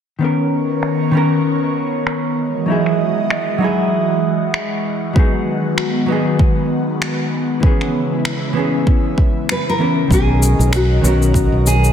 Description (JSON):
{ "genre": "sunset chillout", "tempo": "97 BPM", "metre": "4/4", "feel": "swing 57% on 16ths", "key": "unclear", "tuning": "A4 = 440 Hz", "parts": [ { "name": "hollow-body jazz guitar", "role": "accompaniment", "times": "0.2-11.9 s", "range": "D#3 to A#4", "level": "-19 LUFS", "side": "equal", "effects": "auto-pan, ping-pong delay" }, { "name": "airy breathy pad", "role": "sustained chords", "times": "0.2-11.9 s", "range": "C#3 to D#5", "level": "-20 LUFS", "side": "equal", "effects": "chorus, phaser" }, { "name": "electronic finger snaps and cabasa", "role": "drums", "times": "0.8-11.9 s", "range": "none", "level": "-24 LUFS", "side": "equal", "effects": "overdrive, soft clipping on snare, low-pass filter on snare, low-pass filter on perc" }, { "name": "electronic kick drum", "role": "drums", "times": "5.2-11.5 s", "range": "none", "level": "-14 LUFS", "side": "equal", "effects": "overdrive" }, { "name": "nylon-string guitar", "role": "melody", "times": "9.5-11.9 s", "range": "F#4 to B4", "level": "-19 LUFS", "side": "equal", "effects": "tape echo" }, { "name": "fingered electric bass", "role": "bass", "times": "10.1-11.9 s", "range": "B1", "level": "-14 LUFS", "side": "equal", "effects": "none" } ], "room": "wet concert hall reverb, RT60 2.0 s", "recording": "dense, heavily limited modern master", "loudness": "-14 LUFS", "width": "side -8 dB against mid", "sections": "0.2-10.1 A section; 10.1-11.9 B section", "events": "filter sweep on drum 0.2-10.1", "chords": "0.2 Bmaj9; 2.4 Emaj9; 5.2 G#m7; 7.6 C#m7; 10.1 Bmaj9", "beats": "| 0.21 0.83 1.45 2.07 | 2.69 3.31 3.92 4.54 | 5.16 5.78 6.40 7.02 | 7.64 8.26 8.87 9.49 | 10.11 10.73 11.35" }